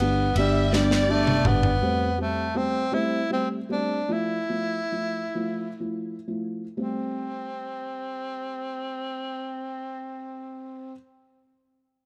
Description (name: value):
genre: six-eight pop ballad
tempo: 39-55 BPM (dotted quarters)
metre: 6/8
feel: straight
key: A minor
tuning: A4 = 440 Hz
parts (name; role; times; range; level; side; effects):
- breathy tenor saxophone; melody; 0.0-10.9 s; G3 to E4; -31 LUFS; equal; none
- felt-muted upright piano; accompaniment; 0.0-10.9 s; F3 to E4; -30 LUFS; equal; none
- vintage muted fingered electric bass; bass; 0.0-1.8 s; G1; -28 LUFS; equal; none
- modern studio drum kit; drums; 0.0-1.8 s; ride cymbal, snare drum, toms; -30 LUFS; equal; none
- warm studio violin section; second line; 0.3-1.8 s; D5 to E5; -32 LUFS; equal; none
room: light reverb, studio reverb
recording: none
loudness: -26 LUFS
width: mono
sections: 0.0-1.8 A section; 1.8-6.8 B section; 6.8-12.1 C section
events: drum fill 0.7-1.8; slowing down 1.8-6.8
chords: 0.0 G; 1.8 Am7; 4.1 Fmaj7; 6.8 Am7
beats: 0.72 | 1.81 2.92 | 4.08 5.35 | 6.78 8.31 | 9.85